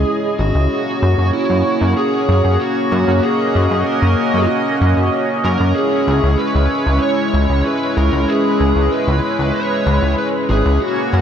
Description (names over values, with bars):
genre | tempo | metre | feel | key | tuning
synthwave | 95 BPM | 4/4 | straight | C# dorian | A4 = 440 Hz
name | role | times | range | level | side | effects
smooth overdriven lead guitar | melody | 0.0-11.2 s | E4 to C#5 | -21 LUFS | equal | analog delay
chorused pulse-width pad | sustained chords | 0.0-11.2 s | G#3 to D#5 | -17 LUFS | equal | vintage 12-bit sampler grit
chorused synth bass | bass | 0.0-11.2 s | G#1 to F#2 | -15 LUFS | equal | none
room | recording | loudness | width
moderate huge ambient reverb, RT60 8.7 s | dreamy mix soaked in reverb | -14 LUFS | side -8 dB against mid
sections
0.0-11.2 A section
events
none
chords
0.0 C#m; 0.7 F#; 5.8 C#m